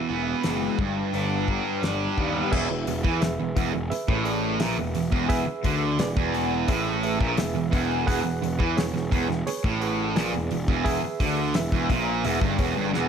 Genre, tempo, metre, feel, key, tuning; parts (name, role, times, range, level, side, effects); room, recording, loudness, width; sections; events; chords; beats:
classic rock; 86 BPM; 4/4; straight; E mixolydian; A4 = 441 Hz
crunchy overdriven guitar; riff; 0.0-13.1 s; E2 to D4; -30 LUFS; left 12 dB; phaser
distorted electric guitar; riff; 0.0-13.1 s; E2 to D4; -27 LUFS; right 10 dB; overdrive
fuzz picked electric bass; bass; 0.1-13.1 s; E1 to E2; -30 LUFS; left 1 dB; overdrive
damped 70s drum kit; drums; 0.4-13.1 s; crash cymbal, hi-hat, kick drum, snare drum; -28 LUFS; left 1 dB
barky reed electric piano; accompaniment; 2.5-13.1 s; G#4 to F#5; -32 LUFS; right 5 dB; tremolo
moderate large studio reverb, RT60 1.2 s, small room ambience; -22 LUFS; side -7 dB against mid
0.0-2.5 A section; 2.5-13.1 B section
drum fill 12.9
0.0 E; 0.8 G; 2.5 E
0.44 1.13 1.83 | 2.52 3.22 3.91 4.61 | 5.30 5.99 6.69 7.38 | 8.08 8.77 9.46 10.16 | 10.85 11.54 12.24 12.93